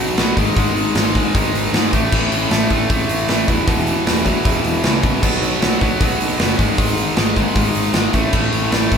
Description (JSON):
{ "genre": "punk rock", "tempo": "154 BPM", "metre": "4/4", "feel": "straight", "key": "unclear", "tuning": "A4 = 441 Hz", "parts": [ { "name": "tight distorted guitar", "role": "riff", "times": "0.0-9.0 s", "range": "E2 to B3", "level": "-18 LUFS", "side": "equal", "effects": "distortion" }, { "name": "fuzz picked electric bass", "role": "bass", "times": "0.0-9.0 s", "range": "E1 to G#2", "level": "-23 LUFS", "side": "equal", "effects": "overdrive" }, { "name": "big rock drum kit", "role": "drums", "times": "0.2-9.0 s", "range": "crash cymbal, hi-hat, kick drum, snare drum", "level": "-18 LUFS", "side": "equal", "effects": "none" } ], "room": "light reverb", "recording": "band playing live in one room", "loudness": "-14 LUFS", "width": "side -7 dB against mid", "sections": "0.0-9.0 A section", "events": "none", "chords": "0.4 G#5; 1.9 A5; 3.5 E5; 5.2 B5; 6.6 G#5; 8.1 A5" }